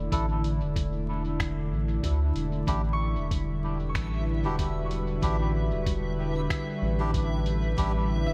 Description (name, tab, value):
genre	ambient dub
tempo	94 BPM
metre	4/4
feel	swing 56% on 16ths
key	unclear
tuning	A4 = 440 Hz
part	airy breathy pad	sustained chords	0.0-8.3 s	D3 to D5	-34 LUFS	equal	chorus
part	round analog bass	bass	0.0-8.3 s	E1 to D2	-31 LUFS	equal	none
part	melodica	stabs	0.1-7.9 s	D4 to A4	-39 LUFS	equal	low-pass filter, dub echo
part	electronic kick drum	drums	0.1-7.9 s	none	-34 LUFS	equal	overdrive
part	lo-fi sampler-style drum kit	drums	0.1-7.9 s	finger snaps, hi-hat	-41 LUFS	equal	overdrive, dub echo
part	backwards swelling texture	texture	3.1-8.3 s	E5	-43 LUFS	equal	built-in reverb, analog chorus
part	Celtic harp	arpeggios	2.9-8.3 s	F#4 to C#6	-42 LUFS	equal	dub echo
room	moderate plate reverb, RT60 2.5 s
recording	dreamy mix soaked in reverb, vinyl crackle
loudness	-28 LUFS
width	mono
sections	0.0-8.3 A section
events	none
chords	0.0 Asus4; 2.7 Em7